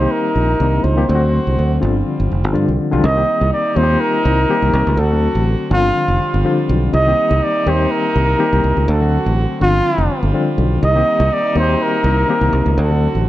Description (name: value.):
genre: disco.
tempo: 123 BPM.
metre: 4/4.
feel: straight.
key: C minor.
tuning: A4 = 445 Hz.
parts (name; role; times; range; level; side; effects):
breathy flugelhorn; melody; 0.0-13.2 s; F4 to Eb5; -18 LUFS; equal; none.
barky reed electric piano; accompaniment; 0.0-13.3 s; D3 to G4; -20 LUFS; left 4 dB; overdrive, fast tremolo.
muted French horn section; sustained chords; 0.0-13.3 s; C3 to F#4; -24 LUFS; right 2 dB; none.
fingered electric bass; bass; 0.0-13.3 s; F1 to G2; -16 LUFS; equal; none.
room: light reverb, small room ambience.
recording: dark, warm production.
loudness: -13 LUFS.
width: side -14 dB against mid.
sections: 0.0-3.0 A section; 3.0-13.3 B section.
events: none.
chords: 0.0 Cm7; 1.1 D7; 1.8 G7sus4; 3.0 Cm7; 5.0 D7; 5.7 G7sus4; 6.9 Cm7; 8.9 D7; 9.6 G7sus4; 10.8 Cm7; 12.8 D7.